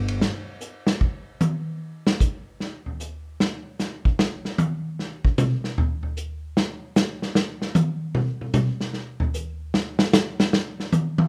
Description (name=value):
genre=jazz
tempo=151 BPM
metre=4/4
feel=swing 66% on 8ths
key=none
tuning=none
part: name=vintage drum kit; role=drums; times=0.1-11.2 s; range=hi-hat, kick drum, ride cymbal, snare drum, toms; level=-24 LUFS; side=equal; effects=none
room=light reverb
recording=none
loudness=-25 LUFS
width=mono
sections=0.2-11.3 A section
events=drum solo 0.2-11.3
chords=none